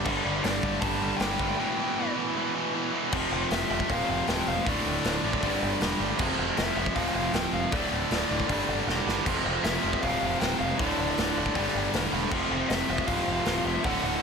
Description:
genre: punk rock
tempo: 156 BPM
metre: 4/4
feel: straight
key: unclear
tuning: A4 = 440 Hz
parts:
  - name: overdriven electric guitar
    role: riff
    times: 0.0-14.2 s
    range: D2 to G3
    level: -31 LUFS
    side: right 12 dB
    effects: none
  - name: tight distorted guitar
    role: riff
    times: 0.0-14.2 s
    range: D2 to G3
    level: -33 LUFS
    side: left 16 dB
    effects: distortion
  - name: tight distorted guitar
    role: riff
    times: 0.0-14.2 s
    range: D2 to G3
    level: -32 LUFS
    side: right 1 dB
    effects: distortion
  - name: growling picked electric bass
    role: bass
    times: 0.1-14.2 s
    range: D1 to A1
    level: -34 LUFS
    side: equal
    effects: overdrive
  - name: raw garage drum kit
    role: drums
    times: 0.1-13.9 s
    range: crash cymbal, hi-hat, kick drum, snare drum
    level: -30 LUFS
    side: equal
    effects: none
  - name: lead guitar through a small cranked amp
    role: melody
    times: 0.4-14.2 s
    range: D5 to A5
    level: -32 LUFS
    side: left 3 dB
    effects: overdrive
room: light reverb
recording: none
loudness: -24 LUFS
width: side -6 dB against mid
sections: 0.0-3.1 A section; 3.1-14.2 B section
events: drum fill 8.9-9.3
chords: 0.0 G5; 1.6 Em; 3.1 F5; 4.7 D5; 5.4 G5; 6.2 F5; 7.7 D5; 8.5 G5; 9.3 F5; 10.8 D5; 11.6 G5; 12.3 F5

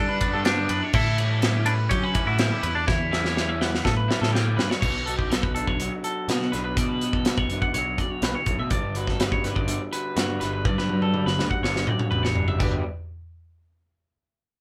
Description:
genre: math rock and midwest emo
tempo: 123 BPM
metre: 4/4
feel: straight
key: G lydian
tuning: A4 = 441 Hz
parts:
  - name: twelve-string electric guitar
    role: melody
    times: 0.0-4.3 s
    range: C#4 to E4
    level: -30 LUFS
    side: equal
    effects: none
  - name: twangy electric guitar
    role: arpeggios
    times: 0.0-12.8 s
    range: F#4 to F#5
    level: -32 LUFS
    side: equal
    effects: none
  - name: fuzz picked electric bass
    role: bass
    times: 0.0-12.8 s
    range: G1 to G3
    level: -30 LUFS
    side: equal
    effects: overdrive
  - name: raw garage guitar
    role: riff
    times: 0.2-4.7 s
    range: D3 to E4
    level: -36 LUFS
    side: equal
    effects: overdrive, spring reverb
  - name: modern studio drum kit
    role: drums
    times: 0.2-12.7 s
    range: crash cymbal, hi-hat, kick drum, ride cymbal, snare drum, toms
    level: -28 LUFS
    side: equal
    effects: none
  - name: electric guitar through a small old amp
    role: accompaniment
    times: 4.8-12.8 s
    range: G2 to B4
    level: -34 LUFS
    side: equal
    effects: none
room: moderate studio ambience, RT60 0.5 s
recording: band playing live in one room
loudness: -24 LUFS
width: mono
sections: 0.0-4.8 A section; 4.8-12.6 B section; 12.6-14.5 C section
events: drum fill 2.9-4.8, 10.7-12.6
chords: 0.0 G; 0.9 A9; 4.8 Bm9; 8.7 Gmaj7; 12.6 N.C.

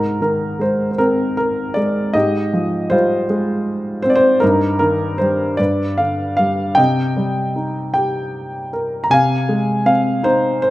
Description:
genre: classical, lyrical solo piano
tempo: 52 BPM (dotted quarters)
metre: 6/8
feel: rubato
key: C minor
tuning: A4 = 440 Hz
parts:
  - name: dark grand piano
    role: solo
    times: 0.0-10.7 s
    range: G2 to Bb5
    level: -15 LUFS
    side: equal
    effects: none
room: moderate recital hall reverb, RT60 1.8 s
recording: close, detailed microphones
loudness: -15 LUFS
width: side -16 dB against mid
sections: 0.0-10.7 A section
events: none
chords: 0.0 Ab; 2.1 Fmadd9/Ab; 4.4 Eb6/G; 5.6 G; 6.8 Cm7; 9.1 Ab6/C

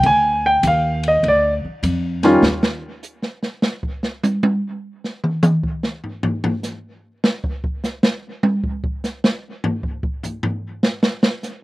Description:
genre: jazz piano trio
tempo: 100 BPM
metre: 4/4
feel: swing 66% on 8ths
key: Bb major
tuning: A4 = 441 Hz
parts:
  - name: warm grand piano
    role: melody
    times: 0.0-2.4 s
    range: Eb3 to Ab5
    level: -14 LUFS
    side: equal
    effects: slapback echo
  - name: upright bass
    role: bass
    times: 0.0-2.8 s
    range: D2 to F2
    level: -22 LUFS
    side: equal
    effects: none
  - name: open jazz drum kit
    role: drums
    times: 0.0-11.6 s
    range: hi-hat, kick drum, ride cymbal, snare drum, toms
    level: -19 LUFS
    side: equal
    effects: none
room: little or no reverb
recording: recorded outdoors, with no room sound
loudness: -17 LUFS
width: side -19 dB against mid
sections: 0.0-11.6 A section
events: grand piano solo 0.0-11.6; drum solo 2.4-11.6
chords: 0.0 Bb (rootless); 2.4 N.C.

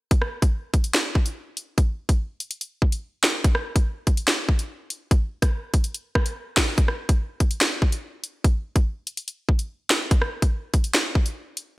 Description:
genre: hip hop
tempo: 144 BPM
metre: 4/4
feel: half-time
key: none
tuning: none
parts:
  - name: drill drum kit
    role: drums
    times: 0.1-11.7 s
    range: finger snaps, hi-hat, kick drum, rim click, snare drum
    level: -20 LUFS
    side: equal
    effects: none
room: light reverb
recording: dry, gritty hardware recording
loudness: -21 LUFS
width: side -20 dB against mid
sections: 0.1-11.8 A section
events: none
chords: none

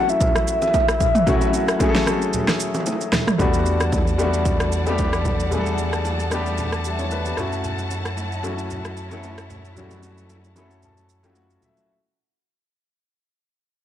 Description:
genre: amapiano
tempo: 113 BPM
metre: 4/4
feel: swing 55% on 16ths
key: unclear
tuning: A4 = 441 Hz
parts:
  - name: soft octave-layered synth lead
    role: melody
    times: 0.0-2.9 s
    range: E5 to F#5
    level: -21 LUFS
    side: left 1 dB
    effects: chorus, phaser, digital delay
  - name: warm grand piano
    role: accompaniment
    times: 0.0-11.9 s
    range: F#3 to B5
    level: -24 LUFS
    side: left 3 dB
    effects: none
  - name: deep house drum kit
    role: drums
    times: 0.1-11.9 s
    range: kick drum, rim click, shaker, snare drum, toms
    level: -22 LUFS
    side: right 1 dB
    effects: overdrive, soft clipping on snare
  - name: congas and bongos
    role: percussion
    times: 0.2-11.9 s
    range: none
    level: -30 LUFS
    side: right 2 dB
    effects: none
  - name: warm symphonic string section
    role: sustained chords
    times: 3.4-11.9 s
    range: G3 to A5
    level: -31 LUFS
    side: left 1 dB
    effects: sidechain pumping
  - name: sub bass with octave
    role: bass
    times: 3.4-11.6 s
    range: E2 to F#2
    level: -26 LUFS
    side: right 1 dB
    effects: none
room: light reverb, small room ambience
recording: blown-out, overdriven recording, overdrive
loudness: -19 LUFS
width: side -11 dB against mid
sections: 0.0-3.4 A section; 3.4-11.9 B section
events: break 2.3-3.4; fade-out 3.4-11.9; grand piano fill 10.3-11.9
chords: 0.0 F#m7; 3.4 Em11; 7.4 F#m7

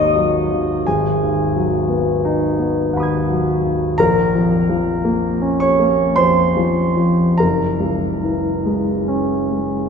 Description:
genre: classical, impressionist solo piano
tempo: 47-59 BPM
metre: 3/4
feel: rubato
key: B major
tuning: A4 = 435 Hz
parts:
  - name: warm concert grand piano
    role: solo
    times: 0.0-9.9 s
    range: Gb1 to G#6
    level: -15 LUFS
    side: equal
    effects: none
room: wet church reverb, RT60 3.3 s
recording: recorded in a church or concert hall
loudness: -15 LUFS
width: side -6 dB against mid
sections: 0.0-9.9 A section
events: none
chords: 0.0 G#m9; 0.9 B6/G#; 4.0 Bbm; 7.4 Gb9

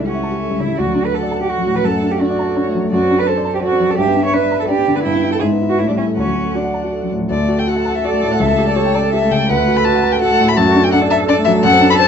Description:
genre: quick classical-period movement for piano trio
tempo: 167 BPM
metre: 3/4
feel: rubato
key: D major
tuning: A4 = 440 Hz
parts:
  - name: dark violin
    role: melody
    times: 0.0-12.1 s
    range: C5 to B5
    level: -20 LUFS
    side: left 6 dB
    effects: none
  - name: warm concert grand piano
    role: accompaniment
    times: 0.0-12.1 s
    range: C#2 to B5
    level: -16 LUFS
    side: left 1 dB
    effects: none
  - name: rich cello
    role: second line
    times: 0.1-12.1 s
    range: C#4 to C#5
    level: -18 LUFS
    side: right 5 dB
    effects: none
room: moderate studio reverb, RT60 0.8 s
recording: dark, warm production, nothing above 7.8 kHz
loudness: -13 LUFS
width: side -7 dB against mid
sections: 0.0-7.3 A section; 7.3-12.1 A section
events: none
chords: 0.0 A7/C#; 0.8 D; 1.8 D/F#; 2.9 D7/F#; 4.0 G; 5.1 Em/G; 5.4 E/G#; 5.8 A7; 6.2 D; 8.4 A7/C#; 9.5 D; 10.6 D/F#

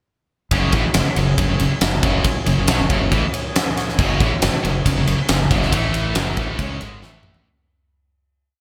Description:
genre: hard rock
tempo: 138 BPM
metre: 4/4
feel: straight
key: F# minor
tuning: A4 = 438 Hz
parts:
  - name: overdriven tonewheel organ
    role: sustained chords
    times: 0.5-7.5 s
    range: F#3 to B4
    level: -34 LUFS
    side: equal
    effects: none
  - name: cranked stack guitar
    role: riff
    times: 0.5-7.5 s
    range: F#2 to C#4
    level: -28 LUFS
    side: equal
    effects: overdrive
  - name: scooped high-gain guitar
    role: riff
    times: 0.5-7.5 s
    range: F#2 to C#4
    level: -25 LUFS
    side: equal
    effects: distortion
  - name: modern bright fingered electric bass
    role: bass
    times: 0.5-7.4 s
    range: F#1 to C#2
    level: -26 LUFS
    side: equal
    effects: none
  - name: huge arena drum kit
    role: drums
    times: 0.5-7.4 s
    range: crash cymbal, kick drum, ride cymbal, snare drum, toms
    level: -22 LUFS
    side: equal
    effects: none
room: moderate lush hall reverb, RT60 2.0 s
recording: big arena sound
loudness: -19 LUFS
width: mono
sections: 0.5-7.5 riff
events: fade-out 5.7-7.5; drum fill 7.0-7.5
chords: 0.5 F#m; 5.7 A5; 6.2 F#m; 7.0 A5

